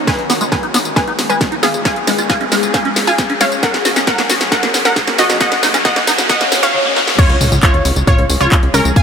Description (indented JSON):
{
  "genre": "uplifting trance",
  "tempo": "135 BPM",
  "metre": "4/4",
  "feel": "straight",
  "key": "unclear",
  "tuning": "A4 = 436 Hz",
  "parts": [
    { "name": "shimmering ambient pad", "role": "sustained chords", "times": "0.0-9.0 s", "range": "Eb3 to Ab4", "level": "-23 LUFS", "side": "left 3 dB", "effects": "chorus, built-in reverb, phaser, sidechain pumping" },
    { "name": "riser, swell and sub drop", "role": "sound effects", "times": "0.0-9.0 s", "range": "none", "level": "-20 LUFS", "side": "equal", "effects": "none" },
    { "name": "wide unison pluck", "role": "melody", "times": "0.1-9.0 s", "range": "Db4 to Ab5", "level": "-17 LUFS", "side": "equal", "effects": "sidechain pumping, ping-pong delay" },
    { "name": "liquid acid bass", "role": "arpeggios", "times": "0.1-7.0 s", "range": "Db3 to Gb4", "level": "-21 LUFS", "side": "right 1 dB", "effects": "phaser, lush chorus, sidechain pumping, ping-pong delay" },
    { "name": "electronic kick drum", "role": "drums", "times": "0.1-9.0 s", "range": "none", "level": "-15 LUFS", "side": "equal", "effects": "none" },
    { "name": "house drum kit", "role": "drums", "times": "0.1-9.0 s", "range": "crash cymbal, handclaps, hi-hat, snare drum, tambourine, toms", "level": "-17 LUFS", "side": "equal", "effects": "high-pass filter on snare, sidechain pumping on hats, high-pass filter on hats, sidechain pumping on perc, high-pass filter on perc, sidechain pumping on toms, high-pass filter on toms, sidechain pumping on cymbals, high-pass filter on cymbals" },
    { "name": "wide unison pluck", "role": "second line", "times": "7.2-9.0 s", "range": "Bb4 to Ab5", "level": "-20 LUFS", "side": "equal", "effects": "sidechain pumping" },
    { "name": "plucky analog bass", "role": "bass", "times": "7.3-8.9 s", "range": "Db2 to Eb2", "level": "-16 LUFS", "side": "equal", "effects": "sidechain pumping" }
  ],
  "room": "moderate huge ambient reverb, RT60 6.9 s",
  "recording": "high-pass filter",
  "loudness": "-11 LUFS",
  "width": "side -7 dB against mid",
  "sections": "0.0-7.2 A section; 7.2-9.0 B section",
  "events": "build-up 0.0-7.2; drum fill 0.0-6.7, 7.0; riser 0.0-7.2; filter sweep on synth pluck 0.0-7.2; filter sweep on acid bass 0.0-7.2; filter sweep 0.0-7.2; swell 6.3-7.2; drop 7.2-9.0; impact 7.2-9.0",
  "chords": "0.1 Abm; 1.9 Db; 3.6 Gbadd9; 5.4 Ebm7; 7.2 Db"
}